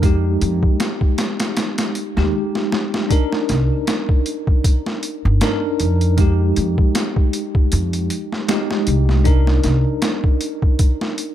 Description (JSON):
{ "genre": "trip hop", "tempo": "78 BPM", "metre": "4/4", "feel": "swing 56% on 16ths", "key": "C minor", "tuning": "A4 = 437 Hz", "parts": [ { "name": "bell-like tine electric piano", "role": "accompaniment", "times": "0.0-11.3 s", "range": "Ab3 to Bb4", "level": "-22 LUFS", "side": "equal", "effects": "fast stereo tremolo, harmonic tremolo, tape echo" }, { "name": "upright bass", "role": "bass", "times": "0.0-9.8 s", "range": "G1 to F2", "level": "-17 LUFS", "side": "equal", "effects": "none" }, { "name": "boom bap sampler-style drum kit", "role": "drums", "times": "0.0-11.3 s", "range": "hi-hat, kick drum, snare drum", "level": "-18 LUFS", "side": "equal", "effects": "overdrive, small room ambience" } ], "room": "digital ambience", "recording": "none", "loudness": "-16 LUFS", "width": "side -11 dB against mid", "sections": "0.0-3.1 A section; 3.1-11.3 B section", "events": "drum fill 2.5-3.1", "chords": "0.0 Fm9; 3.1 Cm9 (rootless); 6.2 Fm9; 9.3 Cm9" }